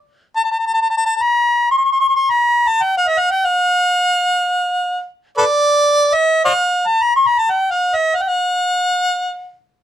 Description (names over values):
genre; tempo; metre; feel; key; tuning
Arabic maqam ensemble; free time; none; none; unclear; A4 = 439 Hz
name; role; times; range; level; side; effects
warm harmonica; solo; 0.4-9.6 s; A4 to C#6-46c; -13 LUFS; equal; none
room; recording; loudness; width
light reverb; none; -14 LUFS; side -11 dB against mid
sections
0.1-9.8 A section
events
none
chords
none